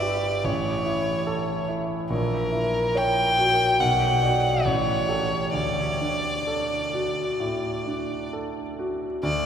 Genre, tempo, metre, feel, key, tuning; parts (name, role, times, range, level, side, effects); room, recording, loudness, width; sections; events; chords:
classical, romantic duo for violin and grand piano; 64-74 BPM; 4/4; rubato; D major; A4 = 443 Hz
clear violin; melody; 0.0-9.5 s; A#4 to G5; -24 LUFS; equal
clear grand piano; accompaniment; 0.0-9.5 s; G1 to D5; -26 LUFS; right 1 dB
wet cathedral reverb, RT60 5.7 s; heard from further back in the room; -22 LUFS; side -8 dB against mid
0.0-9.2 A section
0.5 A; 2.1 F#7/A#; 3.8 Bm; 4.7 A7; 5.6 D